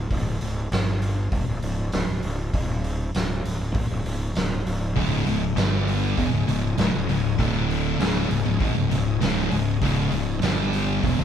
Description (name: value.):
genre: stoner and doom metal.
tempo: 99 BPM.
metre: 4/4.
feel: straight.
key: unclear.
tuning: A4 = 444 Hz.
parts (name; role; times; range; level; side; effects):
fuzz fingered electric bass; bass; 0.0-11.2 s; C#1 to G#1; -26 LUFS; equal; overdrive.
raw garage drum kit; drums; 0.1-11.2 s; hi-hat, kick drum, snare drum; -27 LUFS; right 1 dB; none.
bright tonewheel organ; sustained chords; 4.9-11.2 s; C#3 to E5; -38 LUFS; equal; none.
thick fuzz guitar; riff; 5.0-11.2 s; C#2 to G3; -26 LUFS; left 9 dB; distortion.
thick fuzz guitar; riff; 5.0-11.2 s; C#2 to G3; -25 LUFS; right 5 dB; distortion.
room: light reverb.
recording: band playing live in one room.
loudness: -21 LUFS.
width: side -9 dB against mid.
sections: 0.0-11.2 A section.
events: none.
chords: 0.0 C#5; 0.7 N.C.; 3.1 C#5; 5.6 G5; 6.2 C#m; 7.4 D5; 8.0 C#5; 10.4 G5.